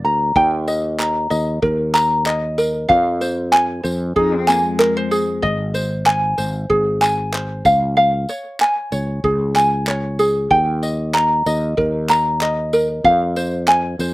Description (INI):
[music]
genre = acoustic pop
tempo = 95 BPM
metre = 4/4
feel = swing 55% on 16ths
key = Eb mixolydian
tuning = A4 = 440 Hz
[part]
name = ukulele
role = accompaniment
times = 0.0-14.1 s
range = Ab4 to Bb5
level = -16 LUFS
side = equal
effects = slapback echo
[part]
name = sustaining fretless electric bass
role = bass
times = 0.0-14.1 s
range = Ab1 to F2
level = -22 LUFS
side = equal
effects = none
[part]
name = soft brush drum kit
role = drums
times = 0.4-14.1 s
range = handclaps, kick drum, tambourine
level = -27 LUFS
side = equal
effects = none
[part]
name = dark cello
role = second line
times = 4.2-5.4 s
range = Ab3 to Eb4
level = -25 LUFS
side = left 7 dB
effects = none
[sound]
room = little or no reverb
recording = recorded outdoors, with no room sound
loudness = -15 LUFS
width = side -19 dB against mid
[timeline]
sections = 0.4-14.1 A section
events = none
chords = 0.4 Eb; 2.9 Fm; 5.4 Ab; 7.7 Db; 10.5 Eb; 13.0 Fm